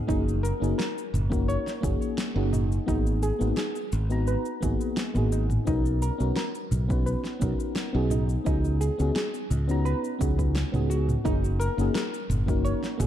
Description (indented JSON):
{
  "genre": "sunset chillout",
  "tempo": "86 BPM",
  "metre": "4/4",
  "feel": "straight",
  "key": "F# major",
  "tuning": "A4 = 445 Hz",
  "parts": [
    { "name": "mellow FM electric piano", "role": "accompaniment", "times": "0.0-13.1 s", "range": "A#3 to A#5", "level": "-30 LUFS", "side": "moving between left 4 dB and right 2 dB", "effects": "chorus, auto-pan, vintage 12-bit sampler grit, digital delay" },
    { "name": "soft round pluck", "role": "arpeggios", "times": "0.1-13.0 s", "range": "D#4 to C#5", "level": "-34 LUFS", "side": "right 1 dB", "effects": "chorus, digital delay" },
    { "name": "modern bright fingered electric bass", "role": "bass", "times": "0.1-13.1 s", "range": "F#1 to C#2", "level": "-26 LUFS", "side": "equal", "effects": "none" },
    { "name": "electronic kick drum", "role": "drums", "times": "0.1-13.1 s", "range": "none", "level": "-29 LUFS", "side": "equal", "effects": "overdrive" },
    { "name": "smooth R&B drum kit", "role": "drums", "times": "0.1-13.1 s", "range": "shaker, snare drum, toms", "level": "-32 LUFS", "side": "right 1 dB", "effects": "none" }
  ],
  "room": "light reverb",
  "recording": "dark, warm production",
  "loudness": "-24 LUFS",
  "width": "side -11 dB against mid",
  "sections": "0.0-11.3 A section; 11.3-13.1 B section",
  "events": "none",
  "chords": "0.1 F#6; 2.9 G#m7; 5.7 Bmaj7; 8.5 C#9sus4; 11.3 F#6"
}